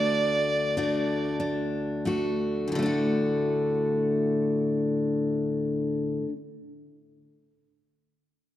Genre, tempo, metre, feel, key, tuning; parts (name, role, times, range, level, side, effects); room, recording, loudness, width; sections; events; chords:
celtic folk, Celtic slow air; 42-57 BPM; 3/4; rubato; D major; A4 = 440 Hz
warm fiddle; melody; 0.0-1.3 s; D5; -27 LUFS; right 2 dB
picked steel-string acoustic guitar; accompaniment; 0.0-6.4 s; D2 to F#4; -25 LUFS; left 1 dB
moderate concert hall reverb, RT60 2.2 s; dark, warm production; -24 LUFS; side -13 dB against mid
0.0-2.7 A section; 2.7-6.7 B section
slowing down 0.0-2.7
0.0 D